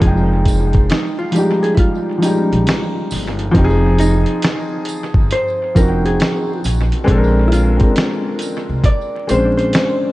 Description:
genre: lo-fi hip hop.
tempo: 68 BPM.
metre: 4/4.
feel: swing 64% on 16ths.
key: F dorian.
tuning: A4 = 440 Hz.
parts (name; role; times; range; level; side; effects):
vintage hollow-body jazz guitar; melody; 0.0-10.1 s; Eb4 to D5; -22 LUFS; right 1 dB; analog delay.
felt-muted upright piano; accompaniment; 0.0-10.1 s; F3 to G5; -17 LUFS; left 1 dB; cassette tape, analog delay.
upright bass; bass; 0.0-9.7 s; F1 to C2; -17 LUFS; equal; none.
dusty soul sampler-style drum kit; drums; 0.0-10.0 s; hi-hat, kick drum, snare drum; -17 LUFS; equal; analog delay.
tambourine; percussion; 0.5-9.5 s; none; -37 LUFS; right 5 dB; analog delay.
room: light reverb, small room reverb.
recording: echo-heavy mix, vinyl crackle, nothing above 10.6 kHz.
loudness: -13 LUFS.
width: side -18 dB against mid.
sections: 0.0-3.5 A section; 3.5-10.1 B section.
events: none.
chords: 0.0 Fm9; 3.5 Fm7; 7.1 Bb9.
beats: | 0.02 0.90 1.78 2.66 | 3.55 4.43 5.31 6.19 | 7.08 7.96 8.84 9.72.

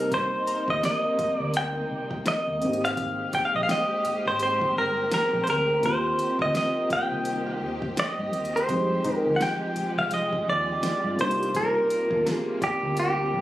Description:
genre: contemporary R&B.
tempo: 84 BPM.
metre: 4/4.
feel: swing 58% on 16ths.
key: unclear.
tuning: A4 = 440 Hz.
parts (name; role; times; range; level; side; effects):
direct-recorded clean electric guitar; melody; 0.0-13.4 s; G4 to G5; -24 LUFS; equal; tape echo.
felt-muted upright piano; accompaniment; 0.0-13.4 s; G3 to G4; -33 LUFS; equal; none.
warm symphonic string section; sustained chords; 0.0-13.4 s; C3 to G4; -33 LUFS; equal; none.
vintage muted fingered electric bass; bass; 0.0-13.4 s; G1 to G2; -34 LUFS; equal; none.
smooth R&B drum kit; drums; 0.0-13.2 s; hi-hat, kick drum, snare drum; -34 LUFS; equal; none.
glassy wavetable pluck; texture; 0.5-13.4 s; Eb4 to Bb5; -38 LUFS; left 2 dB; none.
room: light reverb.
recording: recorded on a phone in the room, studio reverb.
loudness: -23 LUFS.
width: side -14 dB against mid.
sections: 0.0-13.4 A section.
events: none.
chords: 0.0 Cm7; 2.6 Abmaj9; 5.8 Eb6; 8.7 Fm9; 11.2 Cm7.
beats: | 0.12 0.83 1.55 2.26 | 2.98 3.69 4.40 5.12 | 5.83 6.55 7.26 7.97 | 8.69 9.40 10.12 10.83 | 11.55 12.26 12.97.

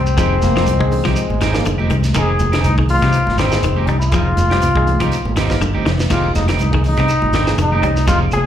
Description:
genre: afrobeat.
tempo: 121 BPM.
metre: 4/4.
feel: swing 55% on 16ths.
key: F dorian.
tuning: A4 = 441 Hz.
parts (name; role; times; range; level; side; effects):
bright trombone; melody; 0.0-8.5 s; C4 to Ab4; -19 LUFS; left 2 dB; slapback echo.
clean electric guitar; arpeggios; 0.0-8.3 s; C3 to Ab3; -23 LUFS; left 6 dB; slapback echo.
fingered electric bass; bass; 0.0-8.5 s; F1 to C2; -18 LUFS; equal; none.
shekere; percussion; 0.1-8.5 s; none; -27 LUFS; right 1 dB; none.
barky reed electric piano; accompaniment; 0.2-8.4 s; Bb3 to Bb4; -28 LUFS; right 2 dB; overdrive, fast tremolo, slapback echo.
electric guitar at the edge of break-up; stabs; 0.2-8.2 s; Ab3 to G4; -24 LUFS; right 7 dB; lush chorus, slapback echo.
tight funk drum kit; drums; 0.2-8.5 s; crash cymbal, hi-hat, kick drum, snare drum, toms; -22 LUFS; right 1 dB; none.
warm trombone section; second line; 0.4-2.0 s; Ab3 to Bb3; -25 LUFS; right 1 dB; slapback echo.
congas; percussion; 0.4-8.5 s; none; -26 LUFS; equal; none.
claves; percussion; 6.4-8.5 s; none; -34 LUFS; right 5 dB; none.
room: small room ambience.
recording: live gig heard through the venue's PA, club reverb.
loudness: -13 LUFS.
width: side -10 dB against mid.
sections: 0.0-8.5 A section.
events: drum fill 5.6-6.1.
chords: 0.0 Fm9.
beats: | 0.17 0.67 1.16 1.65 | 2.15 2.64 3.13 3.63 | 4.12 4.62 5.11 5.61 | 6.10 6.59 7.09 7.58 | 8.08.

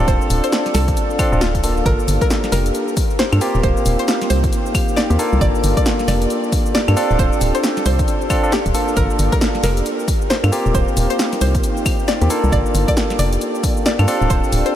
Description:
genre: UK garage, two-step garage.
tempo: 135 BPM.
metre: 4/4.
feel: swing 61% on 16ths.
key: G minor.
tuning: A4 = 444 Hz.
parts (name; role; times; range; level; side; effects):
barky tine electric piano; stabs; 0.0-14.8 s; Bb3 to A4; -21 LUFS; equal; diffuse ambient delay.
organ-like FM bass; bass; 0.0-14.6 s; D1 to G2; -17 LUFS; equal; sidechain pumping.
warbly tape-like pad; texture; 0.0-14.8 s; Bb3 to G5; -26 LUFS; equal; chorus, built-in reverb, sidechain pumping.
string-like resonator pluck; melody; 0.1-14.8 s; F4 to D5; -25 LUFS; left 1 dB; chorus, diffuse ambient delay.
electronic kick drum; drums; 0.1-14.4 s; none; -20 LUFS; equal; overdrive.
punchy analog drum machine; drums; 0.1-14.7 s; claves, hi-hat, shaker, snare drum; -23 LUFS; equal; overdrive.
room: moderate huge ambient reverb, RT60 8.1 s.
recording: dreamy mix soaked in reverb.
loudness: -15 LUFS.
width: side -11 dB against mid.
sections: 0.0-14.8 A section.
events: none.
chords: 0.0 Dm7; 1.9 Gm7; 3.4 Eb69; 5.4 Gm7; 7.0 Dm7; 9.0 Gm7; 10.5 Eb69; 12.5 Gm7; 14.1 Dm7.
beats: | 0.08 0.52 0.97 1.41 | 1.86 2.30 2.75 3.19 | 3.63 4.08 4.52 4.97 | 5.41 5.86 6.30 6.75 | 7.19 7.63 8.08 8.52 | 8.97 9.41 9.86 10.30 | 10.75 11.19 11.63 12.08 | 12.52 12.97 13.41 13.86 | 14.30 14.75.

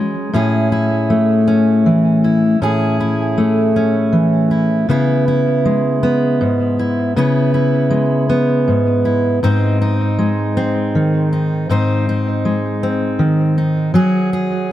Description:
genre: folk.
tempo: 53 BPM (dotted quarters).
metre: 6/8.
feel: straight.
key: C# minor.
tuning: A4 = 441 Hz.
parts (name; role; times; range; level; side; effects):
fingerpicked steel-string acoustic guitar; solo; 0.0-14.7 s; G#2 to B#4; -13 LUFS; equal; analog delay.
room: light reverb.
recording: echo-heavy mix.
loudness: -13 LUFS.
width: side -13 dB against mid.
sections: 0.0-13.9 A section.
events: none.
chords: 0.3 Amaj7; 4.9 C#m7; 9.4 G#; 13.9 F#sus2.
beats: | 0.33 1.47 | 2.61 3.75 | 4.88 6.02 | 7.15 8.29 | 9.42 10.55 | 11.69 12.82 | 13.95.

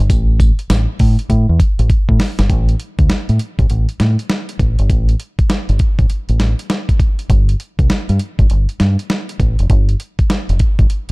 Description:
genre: R&B, new jack swing.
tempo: 100 BPM.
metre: 4/4.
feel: swing 64% on 16ths.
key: unclear.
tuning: A4 = 440 Hz.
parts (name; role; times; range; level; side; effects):
deep dub fingered electric bass; bass; 0.0-11.1 s; F1 to A2; -14 LUFS; equal; none.
dusty soul sampler-style drum kit; drums; 0.1-11.1 s; hi-hat, kick drum, snare drum, tambourine; -15 LUFS; equal; none.
room: little or no reverb.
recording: dark, warm production.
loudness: -12 LUFS.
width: side -27 dB against mid.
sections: 0.0-2.5 A section; 2.5-11.1 B section.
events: drum fill 1.3-2.5.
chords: none.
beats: | 0.10 0.70 1.30 1.90 | 2.50 3.10 3.70 4.30 | 4.90 5.50 6.10 6.70 | 7.30 7.90 8.50 9.10 | 9.70 10.30 10.90.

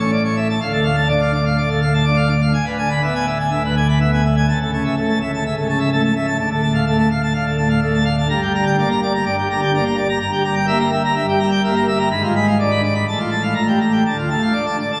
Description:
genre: classical, organ toccata.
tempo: 125 BPM.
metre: 4/4.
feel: straight.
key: D minor.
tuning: A4 = 440 Hz.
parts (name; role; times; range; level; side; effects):
pipe organ, plenum; solo; 0.0-15.0 s; C#1 to B5; -18 LUFS; equal; none.
room: wet cathedral reverb, RT60 5.2 s.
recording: recorded on a phone in the room, club reverb.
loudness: -18 LUFS.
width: mono.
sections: 0.6-15.0 A section.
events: none.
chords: 0.0 A; 0.6 Dm; 2.5 E7/D; 4.5 A/C#; 6.4 Dm; 8.3 Gm; 10.2 Edim/G; 12.1 G#dim7; 13.1 F/A; 13.6 Gmadd9/A; 14.1 Dm.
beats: 0.12 | 0.61 1.10 1.58 2.07 | 2.55 3.03 3.52 4.00 | 4.47 4.95 5.43 5.91 | 6.38 6.86 7.33 7.81 | 8.29 8.76 9.24 9.72 | 10.19 10.67 11.15 11.63 | 12.11 12.59 13.08 13.56 | 14.06 14.55.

